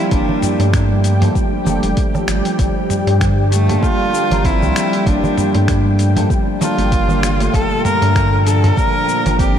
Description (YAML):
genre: organic downtempo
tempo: 97 BPM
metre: 4/4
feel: swing 55% on 16ths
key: G minor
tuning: A4 = 441 Hz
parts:
  - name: rich cello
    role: melody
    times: 0.0-9.6 s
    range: A3 to Bb4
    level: -20 LUFS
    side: left 1 dB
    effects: diffuse ambient delay
  - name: electric guitar at the edge of break-up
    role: accompaniment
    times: 0.0-9.6 s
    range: F3 to Bb5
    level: -26 LUFS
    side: right 3 dB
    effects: sidechain pumping, diffuse ambient delay
  - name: warm analog pad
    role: sustained chords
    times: 0.0-9.6 s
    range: Bb2 to G5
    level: -22 LUFS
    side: right 1 dB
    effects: chorus, sidechain pumping
  - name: handpan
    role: arpeggios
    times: 0.1-9.6 s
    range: D3 to D4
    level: -21 LUFS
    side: equal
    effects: diffuse ambient delay
  - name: warm sub bass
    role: bass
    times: 0.1-9.6 s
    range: F1 to G2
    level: -16 LUFS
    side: equal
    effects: none
  - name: dusty soul sampler-style drum kit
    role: drums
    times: 0.1-9.5 s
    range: finger snaps, hi-hat, shaker, toms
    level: -25 LUFS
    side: equal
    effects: studio ambience
  - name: electronic kick drum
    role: drums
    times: 0.1-9.5 s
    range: none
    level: -19 LUFS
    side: equal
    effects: overdrive, studio ambience
  - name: darbuka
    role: percussion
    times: 0.1-9.4 s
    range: none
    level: -27 LUFS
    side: right 2 dB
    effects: none
room: moderate cathedral reverb, RT60 5.4 s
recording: dreamy mix soaked in reverb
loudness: -13 LUFS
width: side -9 dB against mid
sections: 0.0-9.6 A section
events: none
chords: 0.0 Gm9